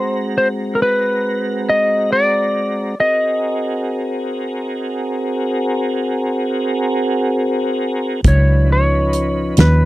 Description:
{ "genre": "slow blues", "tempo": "46 BPM (dotted quarters)", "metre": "12/8", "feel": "straight", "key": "Ab mixolydian", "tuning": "A4 = 441 Hz", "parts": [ { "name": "clean lap steel guitar", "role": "melody", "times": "0.0-9.9 s", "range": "Bb4 to Eb5", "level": "-17 LUFS", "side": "equal", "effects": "none" }, { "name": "tonewheel organ", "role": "sustained chords", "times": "0.0-9.9 s", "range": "F3 to Bb5", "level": "-19 LUFS", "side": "equal", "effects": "slow rotary speaker, chorus vibrato" }, { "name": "vintage muted fingered electric bass", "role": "bass", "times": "8.2-9.9 s", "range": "Db2 to Eb2", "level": "-13 LUFS", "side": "equal", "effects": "none" }, { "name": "natural country drum kit", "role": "drums", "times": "8.2-9.8 s", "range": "hi-hat, kick drum, snare drum", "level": "-13 LUFS", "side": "equal", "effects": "none" } ], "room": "little or no reverb", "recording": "dry, close 1970s-style studio recording", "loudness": "-15 LUFS", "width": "side -17 dB against mid", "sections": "0.0-9.9 A section", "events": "none", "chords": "0.0 Ab9; 8.2 Db9" }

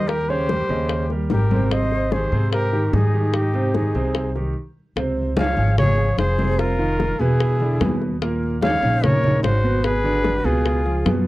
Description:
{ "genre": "Afro-Cuban jazz", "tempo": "148 BPM", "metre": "4/4", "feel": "straight", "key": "Ab major, Db major from 5.0 s", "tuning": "A4 = 441 Hz", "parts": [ { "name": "breathy trumpet", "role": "melody", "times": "0.0-11.3 s", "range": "G4 to F5", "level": "-24 LUFS", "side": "equal", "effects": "none" }, { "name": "breathy bright jazz flute", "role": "second line", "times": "0.0-11.3 s", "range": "Eb4 to Db5", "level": "-30 LUFS", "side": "left 4 dB", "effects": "none" }, { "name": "clear concert grand piano", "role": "accompaniment", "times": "0.0-11.3 s", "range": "Bb2 to Eb5", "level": "-25 LUFS", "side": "right 2 dB", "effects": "none" }, { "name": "upright bass", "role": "bass", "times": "0.0-11.3 s", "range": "Fb1 to Ab2", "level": "-22 LUFS", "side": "equal", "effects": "none" }, { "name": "bongos", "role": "percussion", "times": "0.1-11.3 s", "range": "none", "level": "-27 LUFS", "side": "left 6 dB", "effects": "none" }, { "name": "congas", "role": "percussion", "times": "0.1-11.3 s", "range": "none", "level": "-26 LUFS", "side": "left 1 dB", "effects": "none" } ], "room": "little or no reverb", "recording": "dry, close 1970s-style studio recording", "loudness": "-18 LUFS", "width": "side -17 dB against mid", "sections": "0.0-5.0 A section; 5.0-11.3 B section", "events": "stop 4.6-5.0", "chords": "0.1 Eb7; 1.7 Abmaj7; 5.0 Dbmaj7; 6.6 F5; 7.4 E7; 8.2 Ebm9; 9.8 Abm7b5; 10.7 Db7" }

